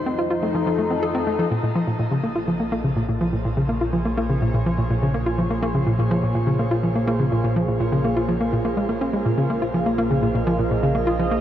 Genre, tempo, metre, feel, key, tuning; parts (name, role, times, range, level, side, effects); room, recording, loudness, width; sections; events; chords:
ambient, sequencer-driven space music; 124 BPM; 4/4; straight; Bb minor; A4 = 437 Hz
sweeping resonant pad; sustained chords; 0.0-11.4 s; Bb3 to Eb5; -26 LUFS; right 1 dB; chorus
analog drone; bass; 0.0-11.4 s; Bb1 to F2; -28 LUFS; equal; chorus, transformer saturation
hollow square pluck; riff; 0.1-11.4 s; Bb2 to A4; -21 LUFS; equal; chorus, ping-pong delay
moderate shimmer reverb, RT60 6.9 s; worn, warbling old tape, cassette tape, warbly pitch drift; -19 LUFS; side -11 dB against mid
0.0-1.5 A section; 1.5-11.4 B section
fade-in on analog synth pad 1.5-11.4
0.0 F7; 1.5 Bbm7